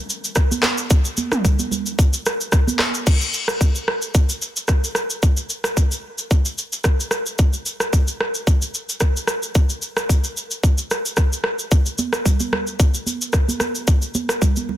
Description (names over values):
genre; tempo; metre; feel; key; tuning
afrobeats; 111 BPM; 4/4; swing 55% on 16ths; none; none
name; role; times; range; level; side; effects
minimal click drum kit; drums; 0.1-14.7 s; crash cymbal, handclaps, kick drum, rim click, shaker, toms; -18 LUFS; equal; soft clipping on snare
congas; percussion; 0.5-2.9, 12.0-14.8 s; none; -26 LUFS; right 5 dB; none
room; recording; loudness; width
digital ambience; dense, heavily limited modern master; -17 LUFS; side -12 dB against mid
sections
0.0-3.1 A section; 3.1-14.8 B section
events
none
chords
none